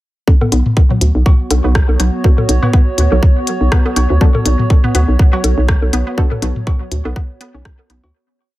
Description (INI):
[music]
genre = minimal techno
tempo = 122 BPM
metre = 4/4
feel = swing 56% on 16ths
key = B minor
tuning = A4 = 441 Hz
[part]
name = filtered dub chord stab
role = stabs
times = 0.3-6.3 s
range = B3 to A4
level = -25 LUFS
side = left 1 dB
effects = chorus, tape echo
[part]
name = electronic kick drum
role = drums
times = 0.3-7.8 s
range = none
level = -11 LUFS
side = equal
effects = none
[part]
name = warbly tape-like pad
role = texture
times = 1.0-8.1 s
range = B3 to C#5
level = -23 LUFS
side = right 2 dB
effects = chorus, built-in reverb, sidechain pumping
[part]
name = resonant blip pluck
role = riff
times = 0.4-7.9 s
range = F#3 to C#4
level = -24 LUFS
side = equal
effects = chorus, sidechain pumping, tape echo
[part]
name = electronic toms, bongos and cowbell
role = percussion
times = 0.4-8.1 s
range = none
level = -20 LUFS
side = left 1 dB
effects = tape echo
[part]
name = hollow knocking FM bass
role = bass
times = 0.5-8.1 s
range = B1 to D2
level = -13 LUFS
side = equal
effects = sidechain pumping
[part]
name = minimal click drum kit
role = drums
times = 0.5-8.0 s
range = hi-hat, rim click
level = -21 LUFS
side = left 2 dB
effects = tape echo
[sound]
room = light reverb, digital ambience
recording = echo-heavy mix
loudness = -11 LUFS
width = side -17 dB against mid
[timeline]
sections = 0.3-8.1 groove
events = fade-out 5.5-8.1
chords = 0.3 Bm